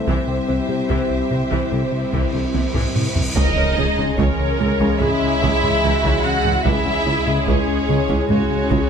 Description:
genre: cinematic, hybrid orchestral and electronic film score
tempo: 73 BPM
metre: 4/4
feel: straight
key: unclear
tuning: A4 = 440 Hz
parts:
  - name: rich symphonic violin section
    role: second line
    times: 0.0-8.9 s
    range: C#4 to E5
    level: -26 LUFS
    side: right 1 dB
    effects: none
  - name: rich symphonic viola section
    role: accompaniment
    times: 0.0-8.9 s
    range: C3 to A#4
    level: -28 LUFS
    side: right 2 dB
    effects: none
  - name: airy breathy pad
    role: sustained chords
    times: 0.0-8.9 s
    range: E3 to C5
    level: -26 LUFS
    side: left 1 dB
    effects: chorus
  - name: mellow French horn section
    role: sustained chords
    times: 0.0-8.9 s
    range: C4 to G#4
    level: -26 LUFS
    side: left 4 dB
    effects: none
  - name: tight sequenced synth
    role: arpeggios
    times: 0.1-8.8 s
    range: C3 to C#4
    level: -29 LUFS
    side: right 2 dB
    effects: none
  - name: smooth gliding synth bass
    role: riff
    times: 0.1-8.8 s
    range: C2 to C#3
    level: -25 LUFS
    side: left 2 dB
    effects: none
  - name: rich symphonic cello section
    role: bass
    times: 0.1-8.8 s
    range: C#2 to C3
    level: -27 LUFS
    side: right 2 dB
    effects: none
  - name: rich symphonic double bass section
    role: bass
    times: 0.1-8.8 s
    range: C2 to C#2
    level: -29 LUFS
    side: right 4 dB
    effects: none
  - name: taiko ensemble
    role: drums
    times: 0.1-8.9 s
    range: none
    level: -26 LUFS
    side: right 1 dB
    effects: none
  - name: cymbal swell and impact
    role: sound effects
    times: 2.1-6.7 s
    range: none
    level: -28 LUFS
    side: right 1 dB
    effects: none
  - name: rich symphonic violin section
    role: melody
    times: 3.4-8.9 s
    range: C#5 to F#5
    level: -24 LUFS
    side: left 1 dB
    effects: none
  - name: bright trombone section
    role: sustained chords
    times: 3.4-8.9 s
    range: C#3 to G#3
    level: -28 LUFS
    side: right 4 dB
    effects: none
  - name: mellow tuba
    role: bass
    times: 3.4-8.8 s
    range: C#2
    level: -29 LUFS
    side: right 6 dB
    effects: none
  - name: warm sub bass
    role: bass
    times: 3.4-8.9 s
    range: C#2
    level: -27 LUFS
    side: equal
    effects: none
room: light reverb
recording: close, detailed microphones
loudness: -16 LUFS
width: side -7 dB against mid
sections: 0.0-3.4 A section; 3.4-8.9 A section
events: cymbal swell 2.1-3.4; drum fill 2.5-3.4; impact 3.4-6.7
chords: 0.0 C; 3.4 C#m

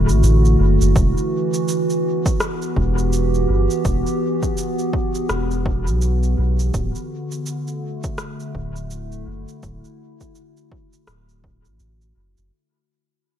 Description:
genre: ambient dub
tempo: 83 BPM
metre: 4/4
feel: swing 60% on 16ths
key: unclear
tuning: A4 = 438 Hz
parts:
  - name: warbly tape-like pad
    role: sustained chords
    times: 0.0-12.5 s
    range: D3 to G4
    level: -22 LUFS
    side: right 1 dB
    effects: chorus, built-in reverb
  - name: soft dub sub bass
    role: bass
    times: 0.0-12.5 s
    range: D1 to B1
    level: -18 LUFS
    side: equal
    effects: none
  - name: electronic cabasa and rim click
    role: drums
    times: 0.1-12.5 s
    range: none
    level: -30 LUFS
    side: equal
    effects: dub echo
  - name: electronic kick drum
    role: drums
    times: 1.0-11.6 s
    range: none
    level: -23 LUFS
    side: equal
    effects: overdrive
room: light reverb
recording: none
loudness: -17 LUFS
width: side -10 dB against mid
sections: 0.0-12.5 A section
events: fade-out 1.0-12.5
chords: 0.0 D; 1.0 Em; 6.7 D

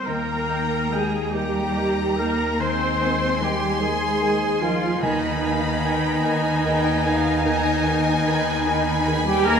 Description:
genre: classical, slow romantic movement for symphony orchestra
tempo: 49 BPM (dotted quarters)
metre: 12/8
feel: rubato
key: unclear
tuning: A4 = 440 Hz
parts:
  - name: bright silver concert flute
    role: second line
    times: 0.0-9.6 s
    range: Eb5 to C6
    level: -31 LUFS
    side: left 2 dB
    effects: none
  - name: clear clarinet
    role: second line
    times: 0.0-9.6 s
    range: Eb4 to C5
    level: -32 LUFS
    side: left 1 dB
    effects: none
  - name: rich symphonic viola section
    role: accompaniment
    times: 0.0-9.6 s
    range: Eb4 to C5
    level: -26 LUFS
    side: right 2 dB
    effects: none
  - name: concert harp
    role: arpeggios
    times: 0.0-9.6 s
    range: Eb3 to G5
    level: -31 LUFS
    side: left 7 dB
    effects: none
  - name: clear studio cello section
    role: bass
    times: 0.0-9.6 s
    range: Eb3 to C4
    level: -27 LUFS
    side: right 1 dB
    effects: none
  - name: rich studio violin section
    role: melody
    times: 0.1-9.6 s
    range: Ab5 to C6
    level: -30 LUFS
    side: left 4 dB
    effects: none
  - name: rich symphonic violin section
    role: second line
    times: 0.1-9.6 s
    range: C5 to Cb6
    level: -32 LUFS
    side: left 3 dB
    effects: none
  - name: warm oboe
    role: second line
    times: 0.1-9.6 s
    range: G5 to Ab5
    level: -34 LUFS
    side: right 2 dB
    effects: none
  - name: dark bassoon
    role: accompaniment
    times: 0.1-9.6 s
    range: Eb3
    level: -33 LUFS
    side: right 1 dB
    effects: none
  - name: dark French horn section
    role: sustained chords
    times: 0.1-9.6 s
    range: Ab3 to Eb4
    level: -31 LUFS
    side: left 5 dB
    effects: none
  - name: warm trumpet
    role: stabs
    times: 0.1-9.6 s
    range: G5 to Ab5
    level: -32 LUFS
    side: right 4 dB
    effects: none
  - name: rich symphonic double bass section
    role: bass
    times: 0.1-9.6 s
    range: Eb2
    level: -30 LUFS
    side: right 3 dB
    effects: none
  - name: timpani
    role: percussion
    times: 5.0-6.2 s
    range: Eb3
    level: -32 LUFS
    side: equal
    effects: none
room: wet scoring stage reverb, RT60 1.5 s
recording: none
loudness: -19 LUFS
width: side -7 dB against mid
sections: 0.1-9.6 A section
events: none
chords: 0.1 Eb; 2.6 Ab/Eb; 5.0 Abm/Eb

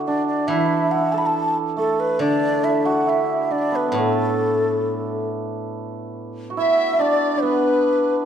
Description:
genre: chinese traditional, Chinese chamber ensemble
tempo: 70 BPM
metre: 4/4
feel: rubato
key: A zhi mode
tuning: A4 = 440 Hz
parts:
  - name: hammered dulcimer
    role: second line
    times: 0.0-8.3 s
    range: A3 to A4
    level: -22 LUFS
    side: right 4 dB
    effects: none
  - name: steel-string zither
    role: accompaniment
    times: 0.0-6.6 s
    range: A2 to E3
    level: -25 LUFS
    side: left 4 dB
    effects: none
  - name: breathy xiao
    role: melody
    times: 0.1-8.3 s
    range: A4 to B5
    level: -22 LUFS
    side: right 1 dB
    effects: none
  - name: reedy large dizi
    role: second line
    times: 6.6-8.3 s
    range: B4 to E5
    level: -21 LUFS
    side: left 5 dB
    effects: none
room: wet recital hall reverb, RT60 1.4 s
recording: dark, warm production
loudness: -18 LUFS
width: side -8 dB against mid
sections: 0.0-5.7 A section; 5.7-8.3 B section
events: none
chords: none

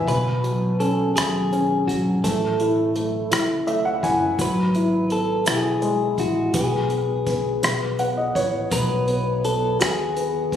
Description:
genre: six-eight pop ballad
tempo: 56 BPM (dotted quarters)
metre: 6/8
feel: straight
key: unclear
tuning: A4 = 440 Hz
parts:
  - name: warm upright piano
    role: accompaniment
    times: 0.0-10.6 s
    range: B2 to G#5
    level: -22 LUFS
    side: left 1 dB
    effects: none
  - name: upright bass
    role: bass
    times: 0.0-10.6 s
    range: F#1 to D#2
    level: -28 LUFS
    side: equal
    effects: none
  - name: clean electric guitar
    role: melody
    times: 0.1-10.6 s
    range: F#4 to B4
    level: -25 LUFS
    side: equal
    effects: spring reverb
  - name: unplugged drum kit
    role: drums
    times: 0.1-10.6 s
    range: hi-hat, kick drum, rim click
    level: -26 LUFS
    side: equal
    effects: none
room: light reverb, small room ambience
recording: recorded on a phone in the room, studio reverb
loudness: -19 LUFS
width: side -9 dB against mid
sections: 0.1-10.6 A section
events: upright piano fill 3.3-4.4, 7.6-8.7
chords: 0.1 Bsus2; 2.2 A; 4.4 Eadd9/G#; 6.5 G#m/B; 7.6 B

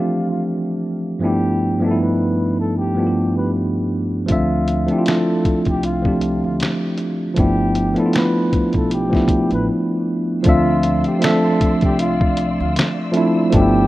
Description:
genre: lo-fi hip hop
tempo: 78 BPM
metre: 4/4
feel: swing 56% on 16ths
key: D dorian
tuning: A4 = 439 Hz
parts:
  - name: breathy flugelhorn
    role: melody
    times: 0.0-13.9 s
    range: F4 to B4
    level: -25 LUFS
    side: left 2 dB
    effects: low-pass filter
  - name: tine electric piano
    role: accompaniment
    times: 0.0-13.9 s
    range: G2 to E5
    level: -17 LUFS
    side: equal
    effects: medium stereo tremolo, cassette tape, low-pass filter
  - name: upright bass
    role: bass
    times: 4.3-13.9 s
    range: G1 to D2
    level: -24 LUFS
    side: equal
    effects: none
  - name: lo-fi sampler-style drum kit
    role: drums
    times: 4.3-13.7 s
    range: finger snaps, hi-hat, kick drum, snare drum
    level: -20 LUFS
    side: equal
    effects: none
  - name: warm studio string section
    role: sustained chords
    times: 10.4-13.9 s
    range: F3 to E6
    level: -31 LUFS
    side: left 2 dB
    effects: low-pass filter
room: light reverb, small room ambience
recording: rough home demo mix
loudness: -16 LUFS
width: side -17 dB against mid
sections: 0.0-10.4 A section; 10.4-13.9 B section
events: break 9.7-10.4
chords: 0.0 Dm9; 1.2 G13; 4.3 Dm9; 7.4 G13; 10.4 Dm9

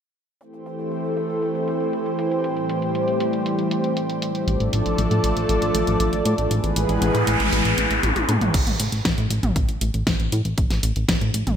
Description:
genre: synthwave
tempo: 118 BPM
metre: 4/4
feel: straight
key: A minor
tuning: A4 = 439 Hz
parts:
  - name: lush unison pad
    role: sustained chords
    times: 0.4-8.5 s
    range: A2 to D5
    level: -22 LUFS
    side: equal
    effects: chorus, sidechain pumping
  - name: pop drum kit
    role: drums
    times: 0.4-11.6 s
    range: crash cymbal, hi-hat, snare drum, toms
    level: -26 LUFS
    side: equal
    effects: low-pass filter on hats, small room ambience, low-pass filter on toms, low-pass filter on cymbals, low-pass filter on snare
  - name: chorused synth bass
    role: bass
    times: 4.5-11.6 s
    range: A1 to A2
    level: -23 LUFS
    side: equal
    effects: tube saturation, sidechain pumping
  - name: noise sweep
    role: sound effects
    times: 6.8-8.5 s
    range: none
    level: -25 LUFS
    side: equal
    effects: none
  - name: electronic kick drum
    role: drums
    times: 8.5-11.2 s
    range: none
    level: -24 LUFS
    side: equal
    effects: small room ambience
room: moderate plate reverb, RT60 2.0 s, digital ambience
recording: bright 1980s-style digital production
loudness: -19 LUFS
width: side -8 dB against mid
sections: 0.4-8.5 A section; 8.5-11.6 B section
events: noise sweep 6.8-8.5; drum fill 8.0-8.5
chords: 0.4 Am7; 2.4 C/A; 4.5 Dm/A; 6.5 E/A; 8.5 N.C.

